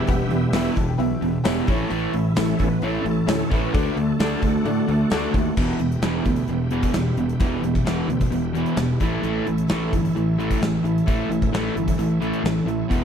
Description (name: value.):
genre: classic rock.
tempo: 131 BPM.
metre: 4/4.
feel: straight.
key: E dorian.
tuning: A4 = 440 Hz.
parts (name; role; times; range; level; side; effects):
picked steel-string acoustic guitar; accompaniment; 0.0-13.0 s; E2 to F#4; -33 LUFS; right 8 dB; none.
bright tonewheel organ; sustained chords; 0.0-13.0 s; G3 to G5; -33 LUFS; equal; overdrive, chorus vibrato, fast rotary speaker.
crunchy overdriven guitar; riff; 0.0-13.0 s; E2 to D4; -25 LUFS; left 9 dB; none.
distorted electric guitar; riff; 0.0-13.0 s; E2 to D4; -25 LUFS; right 11 dB; distortion.
tack piano; accompaniment; 0.1-5.5 s; E4 to A5; -32 LUFS; left 10 dB; none.
fuzz fingered electric bass; bass; 0.1-13.0 s; E1 to A2; -28 LUFS; equal; overdrive.
gated 80s drum kit; drums; 0.1-13.0 s; crash cymbal, hi-hat, kick drum, snare drum; -24 LUFS; equal; none.
tambourine; percussion; 0.6-5.2 s; none; -43 LUFS; right 10 dB; none.
room: little or no reverb.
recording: none.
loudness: -19 LUFS.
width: side -8 dB against mid.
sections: 0.0-5.6 A section; 5.6-13.0 B section.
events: tonewheel organ solo 0.0-5.6; honky-tonk piano fill 0.6-1.9.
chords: 0.0 Em; 1.7 A; 3.7 D; 5.6 Em; 9.0 A.